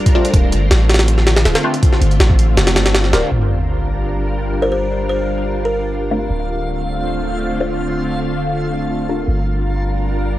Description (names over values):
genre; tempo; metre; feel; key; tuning
drum and bass, jungle; 161 BPM; 4/4; straight; G minor; A4 = 441 Hz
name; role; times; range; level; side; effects
soft string machine; sustained chords; 0.0-10.4 s; D3 to Bb4; -21 LUFS; equal; ensemble chorus
filtered dub chord stab; stabs; 0.0-10.4 s; A3 to Bb4; -23 LUFS; left 1 dB; phaser, dub echo
jungle sampler-style drum kit; drums; 0.1-3.2 s; hi-hat, kick drum, snare drum; -14 LUFS; equal; none
long sustained 808-style bass; bass; 0.3-10.4 s; D1 to A1; -18 LUFS; equal; none
sub drop; sound effects; 3.3-4.8 s; none; -23 LUFS; equal; none
backwards swelling texture; texture; 4.5-10.4 s; F4 to F5; -28 LUFS; left 2 dB; built-in reverb
buzzing kalimba; melody; 4.6-6.0 s; Bb4 to C5; -23 LUFS; left 1 dB; vintage 12-bit sampler grit, dub echo
room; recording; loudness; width
digital ambience; dry, gritty hardware recording; -14 LUFS; side -14 dB against mid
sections
0.0-3.3 A section; 3.3-10.4 B section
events
drop 0.0-3.3; kick drops out 2.6-3.3; impact 3.3-4.8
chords
0.0 Dm7; 3.3 Gm7; 6.3 Dm7; 9.3 Gm7